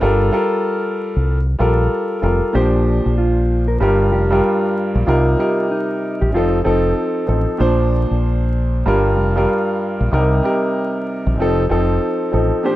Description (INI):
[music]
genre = hip hop, boom-bap hip-hop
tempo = 95 BPM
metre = 4/4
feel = swing 62% on 16ths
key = Bb major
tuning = A4 = 440 Hz
[part]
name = warm upright piano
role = accompaniment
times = 0.0-12.8 s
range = G2 to C5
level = -17 LUFS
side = equal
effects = high-pass filter, low-pass filter
[part]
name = deep dub fingered electric bass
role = bass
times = 0.0-12.5 s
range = F1 to C2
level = -17 LUFS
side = equal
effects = none
[part]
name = mellow electric guitar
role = melody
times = 2.5-6.9, 12.7-12.8 s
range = Eb4 to Bb4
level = -22 LUFS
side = equal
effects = high-pass filter, low-pass filter, tape echo
[sound]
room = light reverb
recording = rough home demo mix, vinyl crackle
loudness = -15 LUFS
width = side -15 dB against mid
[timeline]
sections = 0.0-2.5 A section; 2.5-12.8 B section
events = none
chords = 0.0 Gm9; 2.5 Bbadd9; 3.8 Gm7; 5.1 Cm7; 6.3 F7; 7.6 Bbadd9; 8.9 Gm7; 10.1 Cm7; 11.4 F7